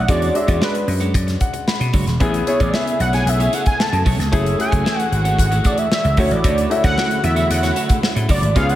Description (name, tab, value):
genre	polished 1980s jazz-funk pop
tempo	113 BPM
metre	4/4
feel	straight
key	unclear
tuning	A4 = 440 Hz
part	fat analog lead	melody	0.0-8.8 s	B4 to A5	-21 LUFS	equal	none
part	clear baby grand piano	accompaniment	0.0-8.8 s	G#3 to B5	-24 LUFS	left 2 dB	lush chorus
part	electric guitar at the edge of break-up	riff	0.0-8.8 s	G#3 to E5	-26 LUFS	right 4 dB	wide subtle chorus
part	vintage slap bass	bass	0.0-8.8 s	E1 to B2	-19 LUFS	equal	none
part	modern studio drum kit	drums	0.1-8.8 s	hi-hat, kick drum, snare drum	-21 LUFS	equal	none
part	dark studio string section	sustained chords	2.2-8.8 s	C#3 to G#4	-28 LUFS	left 2 dB	none
room	moderate plate reverb, RT60 1.9 s, small room ambience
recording	dreamy mix soaked in reverb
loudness	-15 LUFS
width	side -13 dB against mid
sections	0.0-8.8 A section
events	analog synth lead solo 0.0-8.8; grand piano fill 1.1-2.2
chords	0.1 E13; 2.2 Amaj9; 4.3 F#m9; 6.2 Dmaj9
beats	| 0.09 0.62 1.15 1.68 | 2.21 2.74 3.27 3.80 | 4.33 4.86 5.38 5.91 | 6.44 6.97 7.50 8.03 | 8.56